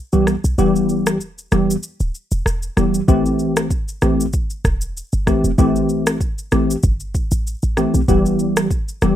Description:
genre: afrobeats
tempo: 96 BPM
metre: 4/4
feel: swing 55% on 16ths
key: A minor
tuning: A4 = 435 Hz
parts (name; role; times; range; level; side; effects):
- tine electric piano; accompaniment; 0.1-9.2 s; E3 to G4; -16 LUFS; left 1 dB; ensemble chorus
- short 808-style bass; bass; 0.1-9.2 s; D1 to B1; -20 LUFS; equal; none
- afro-pop drum kit; drums; 0.1-9.2 s; kick drum, rim click, shaker; -21 LUFS; equal; none
room: little or no reverb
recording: rough home demo mix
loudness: -16 LUFS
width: side -11 dB against mid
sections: 0.0-9.2 A section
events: break 0.0-3.1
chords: 0.0 Em; 3.1 Am7; 8.1 Em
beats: | 0.58 1.21 1.83 2.46 | 3.08 3.71 4.33 4.96 | 5.58 6.21 6.83 7.46 | 8.08 8.71

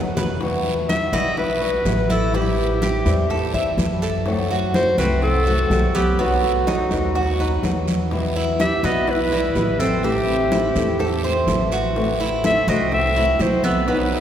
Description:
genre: latin, Cuban son and guajira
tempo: 125 BPM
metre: 4/4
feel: straight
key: E harmonic minor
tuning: A4 = 439 Hz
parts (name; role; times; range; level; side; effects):
- flamenco guitar; accompaniment; 0.0-14.2 s; B2 to F#4; -24 LUFS; left 1 dB; none
- Cuban tres; arpeggios; 0.0-14.2 s; B3 to E5; -26 LUFS; right 1 dB; none
- upright bass; bass; 0.0-14.2 s; A1 to F#2; -24 LUFS; equal; none
- bongos; percussion; 0.2-14.2 s; none; -30 LUFS; left 1 dB; none
- congas; percussion; 0.2-14.2 s; none; -28 LUFS; left 1 dB; none
- guiro; percussion; 0.2-14.2 s; none; -35 LUFS; right 5 dB; none
- clear clarinet; melody; 0.9-14.2 s; F#4 to E5; -23 LUFS; equal; none
- alto flute; second line; 8.6-14.2 s; C4 to A4; -28 LUFS; right 2 dB; none
room: wet cathedral reverb, RT60 5.7 s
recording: recorded in a church or concert hall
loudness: -17 LUFS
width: side -9 dB against mid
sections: 0.4-14.2 A section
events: drum fill 0.0-0.4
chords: 0.4 Emadd9; 2.3 Am7; 4.3 F#dim; 6.2 B; 8.1 Em; 10.0 Am; 12.0 F#m7b5/A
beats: | 0.41 0.89 1.38 1.86 | 2.34 2.82 3.30 3.79 | 4.27 4.75 5.23 5.71 | 6.19 6.67 7.15 7.63 | 8.12 8.60 9.08 9.56 | 10.04 10.52 11.00 11.48 | 11.96 12.44 12.92 13.40 | 13.88

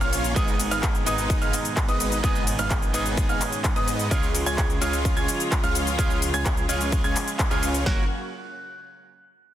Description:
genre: EDM, festival progressive house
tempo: 128 BPM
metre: 4/4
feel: straight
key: unclear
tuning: A4 = 441 Hz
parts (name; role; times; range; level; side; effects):
- dark studio string section; sustained chords; 0.0-8.1 s; B2 to F#4; -34 LUFS; left 3 dB; sidechain pumping
- bright baby grand piano; arpeggios; 0.0-8.0 s; D#6 to G#6; -31 LUFS; right 3 dB; sidechain pumping, tape echo
- dense compressed supersaw; riff; 0.0-8.0 s; G#3 to G#5; -30 LUFS; equal; sidechain pumping, tape echo
- wide detuned saw bass; bass; 0.0-8.1 s; F#1 to G#2; -30 LUFS; equal; chorus, sidechain pumping
- big-room dance drum kit; drums; 0.0-7.8 s; handclaps, hi-hat, ride cymbal, shaker; -29 LUFS; left 1 dB; overdrive
- electric guitar at the edge of break-up; accompaniment; 0.3-8.0 s; G#2 to A#4; -30 LUFS; right 4 dB; sidechain pumping, tape echo
- big-room dance drum kit; drums; 0.4-8.0 s; kick drum, snare drum; -25 LUFS; equal; overdrive
room: light reverb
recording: dense, heavily limited modern master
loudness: -21 LUFS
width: side -12 dB against mid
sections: 0.0-7.9 A section; 7.9-9.5 B section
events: drop 0.0-7.9; band accent 7.4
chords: 0.4 G#m; 4.1 C#; 7.9 F#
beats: | 0.36 0.83 1.30 1.77 | 2.24 2.71 3.17 3.64 | 4.11 4.58 5.05 5.52 | 5.99 6.46 6.92 7.39 | 7.86

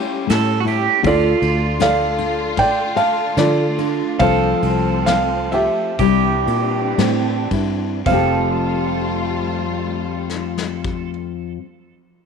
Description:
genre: acoustic folk-pop ballad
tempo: 54-80 BPM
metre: 4/4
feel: straight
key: F major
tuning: A4 = 440 Hz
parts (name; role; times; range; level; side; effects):
- felt-muted upright piano; melody; 0.0-11.1 s; E4 to G5; -20 LUFS; right 2 dB; none
- pedal steel guitar; second line; 0.0-11.1 s; F4 to A4; -24 LUFS; right 13 dB; tape echo
- nylon-string guitar; accompaniment; 0.0-11.7 s; F2 to A4; -23 LUFS; left 11 dB; none
- warm studio string section; sustained chords; 0.0-11.1 s; D3 to F4; -28 LUFS; left 2 dB; none
- fingered electric bass; bass; 0.3-11.1 s; F1 to D3; -22 LUFS; equal; none
- soft brush drum kit; drums; 0.3-11.1 s; crash cymbal, kick drum, ride cymbal, snare drum; -28 LUFS; left 4 dB; none
- felt-muted upright piano; arpeggios; 3.8-11.1 s; C4 to D4; -26 LUFS; right 15 dB; none
room: light reverb, small room ambience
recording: 1960s-style stereo with parts hard left and right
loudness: -16 LUFS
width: side -6 dB against mid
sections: 0.0-8.1 A section; 8.1-12.3 B section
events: slowing down 1.0-8.1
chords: 0.0 A7; 1.0 Dm; 4.2 F/C; 6.0 Cadd9; 8.1 Fadd9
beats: 0.30 | 1.05 1.80 2.58 3.38 | 4.20 5.07 5.99 6.99 | 8.06 9.18 10.29 11.40

